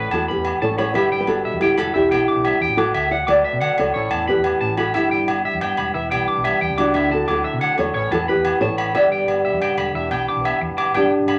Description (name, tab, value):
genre	highlife guitar band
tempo	120 BPM (dotted quarters)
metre	12/8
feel	straight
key	unclear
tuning	A4 = 439 Hz
part	nylon-string guitar	melody	0.0-11.4 s	D4 to E5	-22 LUFS	equal	none
part	fingerpicked plugged-in swing-style acoustic guitar	accompaniment	0.0-11.4 s	G2 to B4	-30 LUFS	equal	none
part	electric guitar at the edge of break-up	arpeggios	0.0-11.4 s	B4 to D6	-26 LUFS	equal	none
part	hollow-body short-scale fingered electric bass	bass	0.0-11.4 s	E1 to D3	-33 LUFS	equal	none
part	agogo bells	percussion	0.1-11.4 s	none	-26 LUFS	equal	none
room	moderate small room reverb, RT60 0.5 s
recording	none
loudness	-19 LUFS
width	mono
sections	0.0-10.9 A section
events	none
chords	0.0 Aadd9; 0.9 G6; 1.9 Em7; 2.9 Dadd9; 3.9 Aadd9; 4.9 G6; 5.9 Em7; 6.9 Dadd9; 7.9 Aadd9; 8.9 G6; 10.0 Em7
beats	0.45 | 0.95 1.44 1.94 2.44 | 2.94 3.44 3.94 4.44 | 4.94 5.45 5.95 6.45 | 6.95 7.45 7.95 8.45 | 8.95 9.45 9.95 10.45 | 10.95